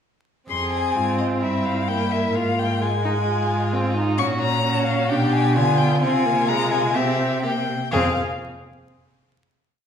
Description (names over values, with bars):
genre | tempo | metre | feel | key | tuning
quick classical-period movement for string quartet | 129 BPM | 4/4 | rubato | F minor | A4 = 440 Hz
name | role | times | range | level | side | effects
warm violin | melody | 0.5-8.2 s | Eb5 to Db6 | -24 LUFS | left 4 dB | none
warm violin | second line | 0.5-8.2 s | Eb4 to Ab4 | -27 LUFS | left 2 dB | none
rich viola | accompaniment | 0.5-8.2 s | Ab3 to Eb4 | -24 LUFS | right 1 dB | none
rich cello | bass | 0.5-8.2 s | F2 to D3 | -24 LUFS | right 1 dB | none
room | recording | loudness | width
wet recital hall reverb, RT60 1.3 s | recorded in a church or concert hall, vinyl crackle | -19 LUFS | side -8 dB against mid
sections
0.5-7.9 theme; 7.9-9.8 final chord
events
none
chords
0.5 Fm; 1.4 Edim/G; 2.4 Fm/Ab; 4.2 Gb/Bb; 5.1 Bdim; 6.0 Fm/C; 7.0 C7; 7.9 F5